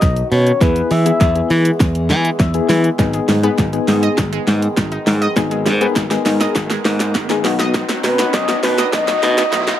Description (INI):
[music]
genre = dance-pop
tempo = 101 BPM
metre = 4/4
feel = straight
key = G# minor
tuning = A4 = 440 Hz
[part]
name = mellow horn-like synth lead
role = melody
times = 0.0-1.5, 8.0-9.8 s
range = B4 to E5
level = -18 LUFS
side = left 1 dB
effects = chorus, slapback echo
[part]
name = clear French horn section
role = sustained chords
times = 0.0-9.8 s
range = D#3 to A#4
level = -26 LUFS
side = right 2 dB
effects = sidechain pumping
[part]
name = modern bright fingered electric bass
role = bass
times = 0.0-9.7 s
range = G#1 to E3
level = -17 LUFS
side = equal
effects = sidechain pumping
[part]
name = pop drum kit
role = drums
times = 0.0-9.8 s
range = hi-hat, kick drum, shaker, snare drum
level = -18 LUFS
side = equal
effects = none
[part]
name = soft electric-piano-like synth keys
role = accompaniment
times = 0.6-9.5 s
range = B3 to E5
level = -21 LUFS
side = left 7 dB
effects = chorus, tremolo
[part]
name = analog pluck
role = arpeggios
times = 3.0-9.8 s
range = D#3 to D#5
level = -25 LUFS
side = right 3 dB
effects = chorus, sidechain pumping, slapback echo
[part]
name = riser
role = sound effects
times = 4.7-9.8 s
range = none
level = -27 LUFS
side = right 1 dB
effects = none
[sound]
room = little or no reverb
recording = dry, close 1970s-style studio recording, high-pass filter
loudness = -13 LUFS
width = side -11 dB against mid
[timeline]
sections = 0.0-9.8 A section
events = build-up 0.0-9.8; drum fill 0.0-9.8; filter sweep 0.0-9.8; synth keys fill 2.1-3.0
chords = 0.0 B; 0.6 E; 3.0 G#m; 7.4 B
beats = 0.02 | 0.61 1.21 1.80 2.40 | 2.99 3.58 4.18 4.77 | 5.37 5.96 6.55 7.15 | 7.74 8.34 8.93 9.53